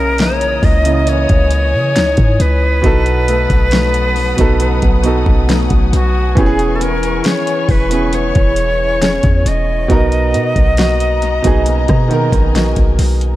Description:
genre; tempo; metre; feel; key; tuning
contemporary R&B; 68 BPM; 4/4; straight; unclear; A4 = 442 Hz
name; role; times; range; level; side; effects
breathy silver concert flute; melody; 0.0-13.0 s; F#4 to D#5; -18 LUFS; equal; analog delay
warm baby grand piano; accompaniment; 0.0-13.4 s; B2 to D#5; -19 LUFS; right 3 dB; analog delay
muted studio string section; sustained chords; 0.0-13.4 s; B3 to D#6; -26 LUFS; left 6 dB; none
nylon-string guitar; arpeggios; 0.0-13.4 s; B2 to G#4; -23 LUFS; left 6 dB; analog delay
warm 808-style bass; bass; 0.0-13.4 s; E1 to C#3; -16 LUFS; equal; none
smooth R&B drum kit; drums; 0.2-13.4 s; hi-hat, kick drum, rim click, snare drum; -15 LUFS; equal; none
room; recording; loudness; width
small room ambience; echo-heavy mix; -11 LUFS; side -15 dB against mid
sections
0.0-13.4 A section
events
none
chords
0.0 C#m69; 2.8 B7; 6.4 E6; 9.9 Bmaj7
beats
0.19 1.07 1.96 | 2.84 3.72 4.60 5.49 | 6.37 7.25 8.13 9.02 | 9.90 10.78 11.66 12.54

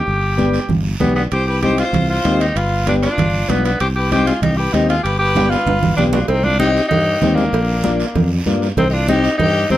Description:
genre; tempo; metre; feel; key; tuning
latin, cumbia; 193 BPM; 4/4; straight; C minor from 6.3 s; A4 = 440 Hz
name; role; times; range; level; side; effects
raspy alto saxophone; melody; 0.0-9.8 s; Bb3 to G4; -19 LUFS; equal; none
fingered electric bass; bass; 0.1-9.8 s; G1 to G2; -19 LUFS; equal; none
congas; percussion; 0.1-9.8 s; none; -21 LUFS; right 2 dB; none
guiro; percussion; 0.1-9.8 s; none; -32 LUFS; right 4 dB; none
overdriven combo organ; accompaniment; 0.4-9.8 s; Bb3 to G4; -20 LUFS; left 3 dB; none
clear fiddle; second line; 1.0-9.8 s; D4 to C5; -26 LUFS; left 3 dB; none
timbales and cowbell; percussion; 1.3-9.6 s; none; -26 LUFS; right 5 dB; none
room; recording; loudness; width
moderate studio reverb, RT60 0.7 s; none; -14 LUFS; side -14 dB against mid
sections
0.0-6.3 A section; 6.3-9.8 B section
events
drum fill 5.4-6.3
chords
0.1 G; 1.3 Cm; 2.6 G7; 3.8 Cm; 5.0 G7; 6.3 Cm; 7.5 Bb; 8.8 Cm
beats
| 0.07 0.39 0.70 1.01 | 1.32 1.63 1.94 2.25 | 2.56 2.87 3.18 3.49 | 3.80 4.11 4.42 4.74 | 5.05 5.36 5.67 5.98 | 6.29 6.60 6.91 7.22 | 7.53 7.84 8.15 8.46 | 8.78 9.09 9.40 9.71

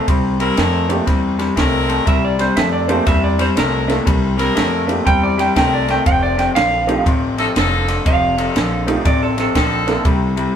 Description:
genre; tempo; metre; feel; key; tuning
electric blues shuffle; 120 BPM; 4/4; swing 65% on 8ths; C mixolydian; A4 = 440 Hz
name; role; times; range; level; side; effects
clean lap steel guitar; second line; 0.0-10.6 s; A4 to G5; -20 LUFS; right 2 dB; none
electric guitar through a small old amp; riff; 0.0-10.5 s; F2 to A3; -19 LUFS; left 3 dB; none
edgy saxophone section; stabs; 0.0-10.1 s; C4 to C5; -22 LUFS; equal; none
upright bass; bass; 0.1-10.5 s; F1 to F2; -23 LUFS; equal; none
compact cocktail drum kit; drums; 0.1-10.5 s; kick drum, ride cymbal, snare drum; -20 LUFS; right 1 dB; none
honky-tonk upright piano; accompaniment; 0.9-10.0 s; A3 to A4; -22 LUFS; right 3 dB; none
room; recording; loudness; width
moderate stone room reverb, RT60 1.3 s; band playing live in one room; -14 LUFS; side -8 dB against mid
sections
0.0-10.6 A section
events
electric slide guitar solo 0.0-10.6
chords
0.0 C7; 6.1 F7; 10.1 C5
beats
| 0.08 0.58 1.08 1.57 | 2.07 2.57 3.07 3.57 | 4.07 4.57 5.06 5.56 | 6.06 6.56 7.06 7.56 | 8.06 8.55 9.05 9.55 | 10.05 10.55

